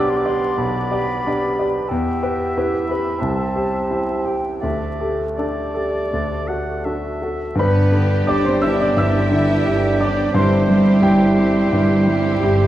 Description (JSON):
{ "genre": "classical", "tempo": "79-94 BPM", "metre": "4/4", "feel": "rubato", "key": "G major", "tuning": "A4 = 440 Hz", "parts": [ { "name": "clear grand piano", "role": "melody", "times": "0.0-12.7 s", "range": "B1 to E6", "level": "-19 LUFS", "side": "equal", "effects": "none" }, { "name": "bright oboe", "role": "second line", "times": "0.0-12.7 s", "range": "G4 to F#5", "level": "-30 LUFS", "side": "right 1 dB", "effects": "none" }, { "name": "concert flute", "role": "second line", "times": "0.0-12.7 s", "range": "D5 to D6", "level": "-29 LUFS", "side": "left 1 dB", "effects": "none" }, { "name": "mellow clarinet", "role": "second line", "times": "0.0-12.7 s", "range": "F#4 to E5", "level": "-29 LUFS", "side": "left 1 dB", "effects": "none" }, { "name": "warm bassoon", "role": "accompaniment", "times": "0.0-12.7 s", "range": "G3 to C4", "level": "-27 LUFS", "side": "right 3 dB", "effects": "none" }, { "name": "rich studio violin section", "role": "second line", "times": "7.6-12.7 s", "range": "G4 to E5", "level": "-30 LUFS", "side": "left 2 dB", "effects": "none" }, { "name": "dark French horn section", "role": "sustained chords", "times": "7.6-12.7 s", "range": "B3 to E4", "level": "-25 LUFS", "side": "equal", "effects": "none" }, { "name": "clear studio cello section", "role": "bass", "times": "7.6-12.7 s", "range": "G3 to E4", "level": "-26 LUFS", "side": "right 2 dB", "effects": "none" }, { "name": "rich studio double bass section", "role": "bass", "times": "7.6-12.7 s", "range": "G1", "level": "-22 LUFS", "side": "right 1 dB", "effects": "none" }, { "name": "rich studio violin section", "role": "melody", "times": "7.9-12.7 s", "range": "G4", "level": "-32 LUFS", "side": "left 2 dB", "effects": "none" }, { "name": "rich studio viola section", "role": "accompaniment", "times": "7.9-12.7 s", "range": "B3 to E4", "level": "-29 LUFS", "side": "right 1 dB", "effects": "none" } ], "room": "wet scoring stage reverb, RT60 1.7 s", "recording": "dark, warm production, vinyl crackle", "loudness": "-16 LUFS", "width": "side -13 dB against mid", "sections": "0.0-7.6 A section; 7.6-12.7 B section", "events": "none", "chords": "0.0 G/B; 3.2 C; 4.6 Dsus4; 7.6 G; 10.4 C/G" }